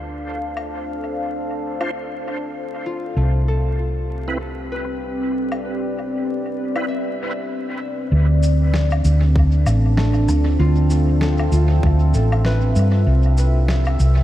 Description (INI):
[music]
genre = ambient dub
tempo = 97 BPM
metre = 4/4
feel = swing 59% on 16ths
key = D dorian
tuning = A4 = 440 Hz
[part]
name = deep dark ambient pad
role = sustained chords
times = 0.0-14.2 s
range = B3 to F5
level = -24 LUFS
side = equal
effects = chorus, built-in reverb
[part]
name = hollow-body short-scale fingered electric bass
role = bass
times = 0.0-14.2 s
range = A1 to G2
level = -16 LUFS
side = equal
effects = none
[part]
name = electronic woodblock, cabasa and snare drum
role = drums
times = 0.6-14.1 s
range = none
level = -29 LUFS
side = left 1 dB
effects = low-pass filter on perc, low-pass filter on snare, low-pass filter on room, dub echo
[part]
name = bright tonewheel organ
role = stabs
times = 1.8-6.9 s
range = C4 to C5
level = -33 LUFS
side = right 2 dB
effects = chorus vibrato, fast rotary speaker, dub echo
[part]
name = concert harp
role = arpeggios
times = 2.9-14.2 s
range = A3 to E5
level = -31 LUFS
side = left 3 dB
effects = analog delay
[part]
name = electronic kick drum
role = drums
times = 9.4-12.0 s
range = none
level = -20 LUFS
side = equal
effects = overdrive
[sound]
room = light reverb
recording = vinyl crackle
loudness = -17 LUFS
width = side -13 dB against mid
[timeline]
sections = 0.0-8.1 A section; 8.1-14.2 B section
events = none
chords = 0.0 Dm7; 3.2 Cmaj7; 8.1 Dm7; 13.1 Cmaj7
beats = 0.08 | 0.70 1.31 1.93 2.55 | 3.17 3.79 4.41 5.03 | 5.64 6.26 6.88 7.50 | 8.12 8.74 9.36 9.97 | 10.59 11.21 11.83 12.45 | 13.07 13.69